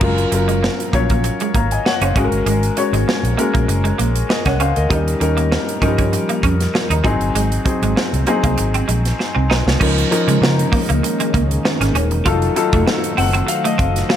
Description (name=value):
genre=polished 1980s jazz-funk pop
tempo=98 BPM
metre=4/4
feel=swing 54% on 16ths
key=Db major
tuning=A4 = 440 Hz
part: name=warm concert grand piano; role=accompaniment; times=0.0-14.2 s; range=F3 to Bb5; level=-19 LUFS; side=left 3 dB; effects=wide subtle chorus
part: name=electric guitar at the edge of break-up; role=riff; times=0.0-14.1 s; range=Ab3 to F4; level=-23 LUFS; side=right 4 dB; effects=ensemble chorus
part: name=vintage muted fingered electric bass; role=bass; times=0.0-14.0 s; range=Eb1 to Db3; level=-18 LUFS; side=equal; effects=none
part: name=modern studio drum kit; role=drums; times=0.0-14.2 s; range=crash cymbal, hi-hat, kick drum, snare drum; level=-20 LUFS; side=right 1 dB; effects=gated reverb
part: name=soft string machine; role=sustained chords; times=9.8-14.2 s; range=Eb3 to C5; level=-24 LUFS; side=equal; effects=ensemble chorus
room=light reverb, studio ambience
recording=none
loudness=-14 LUFS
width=side -10 dB against mid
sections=0.0-9.8 A section; 9.8-14.2 B section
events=drum fill 9.2-9.8; grand piano fill 12.9-14.2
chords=0.0 Gbmaj7; 2.2 Ab9sus4; 4.9 Eb7; 7.0 Ab7; 9.8 Db69; 12.3 F7b9